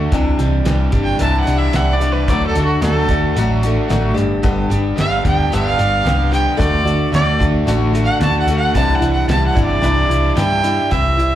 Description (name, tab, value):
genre	folk rock and heartland rock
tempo	111 BPM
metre	4/4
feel	straight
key	unclear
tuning	A4 = 445 Hz
part	picked old ladder-braced acoustic guitar	accompaniment	0.0-11.4 s	G2 to G4	-20 LUFS	left 3 dB	slapback echo
part	crunchy overdriven guitar	riff	0.0-10.9 s	G2 to G4	-23 LUFS	right 2 dB	slapback echo
part	hollow-body short-scale picked electric bass	bass	0.0-11.3 s	G1 to G2	-18 LUFS	equal	none
part	cloth-damped thuddy drum kit	drums	0.1-11.3 s	hi-hat, kick drum, snare drum	-20 LUFS	equal	none
part	rich fiddle	melody	1.0-11.4 s	F#4 to A5	-19 LUFS	right 2 dB	slapback echo
room	light reverb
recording	live gig heard through the venue's PA, club reverb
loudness	-13 LUFS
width	side -12 dB against mid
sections	0.0-10.9 A section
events	fiddle solo 0.0-10.9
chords	0.1 Cadd9; 2.3 D; 4.2 G; 6.6 D; 8.8 Cadd9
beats	| 0.12 0.67 1.21 1.74 | 2.28 2.82 3.36 3.90 | 4.44 4.98 5.52 6.06 | 6.60 7.14 7.68 8.21 | 8.76 9.29 9.84 10.38 | 10.92